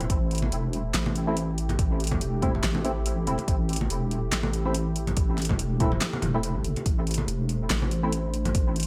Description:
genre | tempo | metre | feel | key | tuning
deep dubstep | 142 BPM | 4/4 | swing 56% on 16ths, half-time | A minor | A4 = 440 Hz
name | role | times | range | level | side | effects
deep dark ambient pad | sustained chords | 0.0-8.9 s | A3 to C5 | -38 LUFS | equal | chorus, built-in reverb
deep soft wobble bass | bass | 0.0-8.9 s | E1 to A1 | -30 LUFS | equal | chorus
deep house drum kit | drums | 0.0-8.9 s | handclaps, hi-hat, snare drum | -33 LUFS | equal | small room ambience
congas | percussion | 0.0-8.5 s | none | -35 LUFS | equal | dub echo
electronic kick drum | drums | 0.1-8.6 s | none | -29 LUFS | equal | small room ambience
percussive organ stab | stabs | 1.3-8.1 s | A3 to E4 | -35 LUFS | equal | ensemble chorus, dub echo
room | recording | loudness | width
light reverb | none | -26 LUFS | mono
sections
0.0-8.9 A section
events
none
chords
0.0 Am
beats
| 0.10 0.52 0.94 1.37 | 1.79 2.21 2.63 3.06 | 3.48 3.90 4.33 4.75 | 5.17 5.59 6.01 6.44 | 6.86 7.28 7.71 8.13 | 8.55

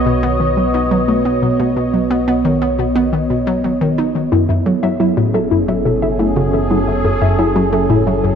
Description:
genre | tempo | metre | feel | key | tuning
ambient, sequencer-driven space music | 88 BPM | 4/4 | straight | F# dorian | A4 = 440 Hz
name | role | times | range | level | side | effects
sweeping resonant pad | sustained chords | 0.0-8.4 s | F#3 to D#5 | -17 LUFS | right 1 dB | wide subtle chorus
analog drone | bass | 0.0-8.4 s | F#1 to B1 | -23 LUFS | equal | chorus
hollow square pluck | riff | 0.1-8.3 s | F#2 to D#4 | -17 LUFS | equal | chorus, ping-pong delay
warbly dusty pluck | arpeggios | 4.3-8.3 s | E4 to E5 | -19 LUFS | moving between left 8 dB and left 2 dB | chorus, auto-pan, ping-pong delay
room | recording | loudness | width
wet plate reverb, RT60 3.5 s | dreamy mix soaked in reverb | -13 LUFS | side -7 dB against mid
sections
0.0-8.4 A section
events
none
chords
0.0 B; 4.3 F#m7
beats
0.23 0.91 | 1.59 2.27 2.96 3.64 | 4.32 5.00 5.68 6.36 | 7.05 7.73

